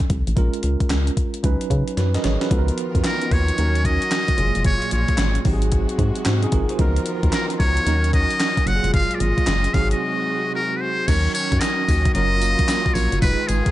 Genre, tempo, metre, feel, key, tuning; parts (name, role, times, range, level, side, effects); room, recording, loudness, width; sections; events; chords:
R&B, new jack swing; 112 BPM; 4/4; swing 64% on 16ths; Eb minor; A4 = 440 Hz
bell-like tine electric piano; accompaniment; 0.0-13.7 s; Fb3 to Eb5; -26 LUFS; right 3 dB; fast stereo tremolo
gated 80s digital drum machine; drums; 0.0-13.7 s; crash cymbal, handclaps, hi-hat, kick drum, snare drum, tambourine; -22 LUFS; equal; gated reverb, gated reverb snare, overdrive
solid FM bass; bass; 0.1-13.6 s; F1 to Db3; -21 LUFS; equal
rich studio string section; sustained chords; 2.5-13.7 s; Bb2 to Bb4; -30 LUFS; left 2 dB
trumpet with metal mute; melody; 3.1-13.7 s; Ab4 to Gb5; -23 LUFS; equal
little or no reverb; nothing above 10.6 kHz; -18 LUFS; side -15 dB against mid
0.0-2.5 A section; 2.5-11.1 B section; 11.1-13.7 C section
drum fill 2.0-2.5; break 10.0-11.1
0.4 Bbm7; 1.4 Db9sus4; 2.5 Db13; 3.6 Ebm7; 4.4 Gbmaj9; 5.5 Ab7; 6.8 Db13; 7.9 Ebm7; 8.7 Gbmaj9; 9.7 Ab7; 11.1 Ebm7; 12.2 Gbmaj7